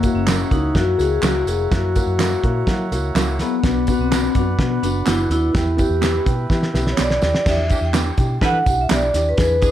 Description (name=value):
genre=uptempo 1960s-style soul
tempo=125 BPM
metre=4/4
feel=straight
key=E minor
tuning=A4 = 439 Hz
part: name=vibraphone with medium mallets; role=melody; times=0.0-9.7 s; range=A#3 to G5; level=-20 LUFS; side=left 2 dB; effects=none
part: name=dark upright piano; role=accompaniment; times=0.0-9.7 s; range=A#3 to A4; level=-27 LUFS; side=left 1 dB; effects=none
part: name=mellow accordion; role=sustained chords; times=0.0-7.5 s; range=B4 to B5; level=-30 LUFS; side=right 4 dB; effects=none
part: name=vintage muted fingered electric bass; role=bass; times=0.0-9.7 s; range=F1 to F#3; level=-22 LUFS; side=equal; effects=none
part: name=cloth-damped thuddy drum kit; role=drums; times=0.0-9.7 s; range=crash cymbal, hi-hat, kick drum, snare drum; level=-21 LUFS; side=equal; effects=none
part: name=tambourine and handclaps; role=percussion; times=0.0-9.7 s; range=none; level=-30 LUFS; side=right 2 dB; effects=none
part: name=mellow electric guitar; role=stabs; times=0.3-9.0 s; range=F#3 to B4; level=-25 LUFS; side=right 7 dB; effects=none
part: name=clear saxophone section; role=second line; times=7.7-9.7 s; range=E3 to B4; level=-27 LUFS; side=right 3 dB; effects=none
room=light reverb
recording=dark, warm production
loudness=-16 LUFS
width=side -11 dB against mid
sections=0.0-7.5 A section; 7.5-9.7 B section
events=drum fill 6.5-7.5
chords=0.0 F#7; 3.6 Bm; 5.5 Em; 7.5 Em7